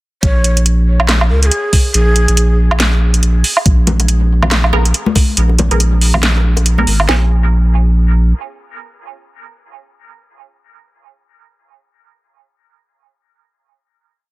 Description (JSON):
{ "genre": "deep dubstep", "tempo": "140 BPM", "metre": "4/4", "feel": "swing 59% on 16ths, half-time", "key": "Bb minor", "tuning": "A4 = 438 Hz", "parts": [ { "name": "breathy mellow ney", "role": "melody", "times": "0.2-2.6 s", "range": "Ab4 to Db5", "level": "-21 LUFS", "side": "equal", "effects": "dub echo" }, { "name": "saturated sub bass", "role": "bass", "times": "0.2-8.3 s", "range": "Ab1 to Db2", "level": "-11 LUFS", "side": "equal", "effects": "none" }, { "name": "garage drum kit", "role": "drums", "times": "0.2-7.2 s", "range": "kick drum, snare drum", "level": "-12 LUFS", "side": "equal", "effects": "studio reverb" }, { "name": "garage drum kit", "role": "drums", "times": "0.2-7.1 s", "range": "hi-hat, snare drum, woodblock", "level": "-15 LUFS", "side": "right 1 dB", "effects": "studio reverb" }, { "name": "congas and bongos", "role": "percussion", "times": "3.9-6.9 s", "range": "none", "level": "-20 LUFS", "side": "left 4 dB", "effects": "dub echo" }, { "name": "filtered dub chord stab", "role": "stabs", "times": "4.7-11.8 s", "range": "Cb4 to Bb4", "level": "-23 LUFS", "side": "right 4 dB", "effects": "phaser, dub echo" } ], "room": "digital ambience", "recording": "dense, heavily limited modern master", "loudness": "-10 LUFS", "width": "side -19 dB against mid", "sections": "0.2-7.1 drop; 7.1-10.5 final chord", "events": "drop 0.2-7.1", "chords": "0.2 Bb7(no3); 3.7 Abmadd9/Bb; 7.1 Bbm7", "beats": "| 0.23 0.66 1.09 1.51 | 1.94 2.37 2.80 3.23 | 3.66 4.09 4.51 4.94 | 5.37 5.80 6.23 6.66 | 7.09 7.51 7.94 8.37 | 8.80 9.23 9.66 10.09" }